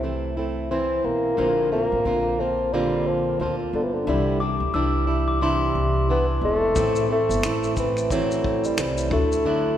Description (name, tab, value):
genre	acoustic pop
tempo	89 BPM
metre	4/4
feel	swing 60% on 16ths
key	unclear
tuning	A4 = 441 Hz
part	mellow bassoon	melody	0.0-9.8 s	C3 to C4	-24 LUFS	left 1 dB	none
part	fingerpicked plugged-in steel-string acoustic guitar	accompaniment	0.0-9.8 s	A2 to F4	-25 LUFS	right 2 dB	none
part	upright bass	bass	0.0-9.4 s	E1 to D2	-28 LUFS	left 1 dB	none
part	dark upright piano	accompaniment	1.4-9.8 s	Bb3 to E5	-34 LUFS	left 6 dB	none
part	glockenspiel with rubber mallets	second line	4.4-5.9 s	C6 to E6	-29 LUFS	left 4 dB	none
part	vintage brush drum kit	drums	6.8-9.4 s	finger snaps, kick drum, shaker	-30 LUFS	left 1 dB	none
room	moderate church reverb, RT60 2.8 s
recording	recorded in a church or concert hall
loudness	-20 LUFS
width	side -10 dB against mid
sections	0.0-1.4 A section; 1.4-9.8 B section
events	none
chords	0.0 Am; 1.4 Bbadd9; 4.1 Cadd9; 6.8 Am; 9.1 Dadd9